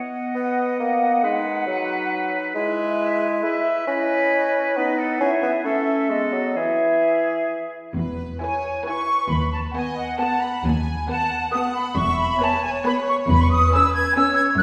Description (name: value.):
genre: quick classical-period movement for symphony orchestra.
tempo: 136 BPM.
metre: 3/4.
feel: rubato.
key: E major.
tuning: A4 = 441 Hz.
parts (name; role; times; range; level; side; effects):
bright flute section; second line; 0.0-14.6 s; D#5 to G#6; -26 LUFS; equal; none.
bright oboe; second line; 0.0-7.7 s; G#4 to D#5; -30 LUFS; equal; none.
warm clarinet; second line; 0.0-7.7 s; B3 to E4; -30 LUFS; equal; none.
warm bassoon; accompaniment; 0.3-7.5 s; E3 to E4; -25 LUFS; equal; none.
rich studio violin section; second line; 8.0-14.6 s; A#4 to G#5; -32 LUFS; equal; none.
rich symphonic cello section; bass; 8.0-14.6 s; D#2 to F#2; -29 LUFS; equal; none.
rich symphonic double bass section; bass; 8.0-14.6 s; E1 to D#2; -27 LUFS; equal; none.
rich chamber violin section; melody; 8.4-14.5 s; F#5 to G#5; -38 LUFS; equal; none.
rich chamber viola section; accompaniment; 8.4-14.5 s; B3 to B4; -31 LUFS; equal; none.
room: wet scoring stage reverb, RT60 1.6 s.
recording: recorded in a church or concert hall.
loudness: -22 LUFS.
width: mono.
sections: 0.0-8.0 A section; 8.0-14.6 B section.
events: none.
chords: 0.0 B; 2.6 E/G#; 3.9 B; 5.7 A; 6.1 B7; 6.6 E; 9.3 B/D#; 12.0 E; 13.3 C#m7/E.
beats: 0.36 0.80 | 1.24 1.68 2.12 | 2.56 3.00 3.44 | 3.88 4.32 4.77 | 5.21 5.66 6.11 | 6.57 7.04 7.50 | 7.96 8.42 8.86 | 9.31 9.75 10.20 | 10.65 11.10 11.54 | 11.98 12.42 12.86 | 13.29 13.73 14.16 | 14.60.